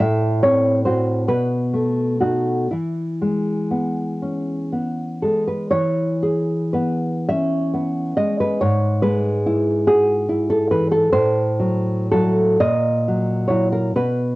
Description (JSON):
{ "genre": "romantic piece for solo classical guitar", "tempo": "36-48 BPM (dotted quarters)", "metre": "6/8", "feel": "rubato", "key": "E major", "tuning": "A4 = 440 Hz", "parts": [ { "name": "nylon-string guitar", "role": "solo", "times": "0.0-14.4 s", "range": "G#2 to E5", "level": "-17 LUFS", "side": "equal", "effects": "cassette tape" } ], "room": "moderate booth ambience, RT60 0.2 s", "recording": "home recording on cassette", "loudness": "-17 LUFS", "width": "side -20 dB against mid", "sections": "0.0-5.7 A section; 5.7-14.4 A section", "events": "none", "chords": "0.0 F#dim/A; 1.3 B7; 2.7 E; 8.6 E/G#; 11.1 F#m7b5/A; 12.6 F#7/A#" }